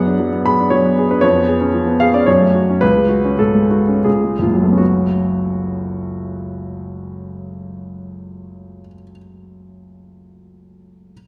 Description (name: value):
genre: classical, romantic character piece for solo piano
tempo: 76-120 BPM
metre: 3/4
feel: rubato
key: F# minor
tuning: A4 = 438 Hz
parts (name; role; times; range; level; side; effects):
- warm grand piano; solo; 0.0-11.1 s; F#1 to B5; -17 LUFS; equal; none
room: wet recital hall reverb, RT60 1.4 s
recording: heard from further back in the room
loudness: -15 LUFS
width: mono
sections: 0.0-4.8 A section; 4.8-8.9 B section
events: slowing down 0.5-4.8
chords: 0.0 G#m7b5/F#; 1.2 C#7/E#; 2.3 F#m; 2.8 C#7sus4; 4.1 C#7; 4.8 F#m